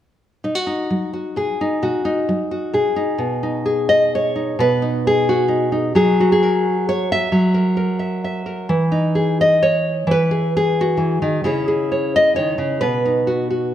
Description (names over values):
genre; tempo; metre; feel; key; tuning
folk, solo fingerstyle acoustic guitar; 131 BPM; 3/4; straight; B major; A4 = 438 Hz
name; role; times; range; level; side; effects
nylon-string guitar; solo; 0.4-13.7 s; B2 to E5; -16 LUFS; equal; none
room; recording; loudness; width
wet recital hall reverb, RT60 1.5 s; none; -16 LUFS; side -10 dB against mid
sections
0.4-3.2 A section; 3.2-13.7 B section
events
none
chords
0.4 B6; 5.9 F#7; 8.7 Emaj7; 11.5 C#m; 12.8 B